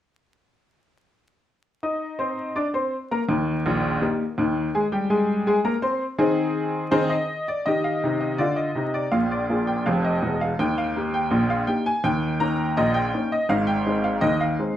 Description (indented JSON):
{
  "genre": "ragtime piano",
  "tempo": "82 BPM",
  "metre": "2/4",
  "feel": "straight",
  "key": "Eb major",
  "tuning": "A4 = 441 Hz",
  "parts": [
    { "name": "clear upright piano", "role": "solo", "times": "1.8-14.8 s", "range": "Fb1 to Eb6", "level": "-21 LUFS", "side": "equal", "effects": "none" }
  ],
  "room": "wet studio reverb, RT60 0.8 s",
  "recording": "heard from further back in the room, vinyl crackle",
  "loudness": "-21 LUFS",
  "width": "side -11 dB against mid",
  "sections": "1.8-7.7 A section; 7.7-14.8 B section",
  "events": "none",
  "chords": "1.8 Eb5; 4.7 Ab; 7.7 Eb; 9.1 Bb5; 10.6 Eb; 12.0 Eb5; 13.5 Ab"
}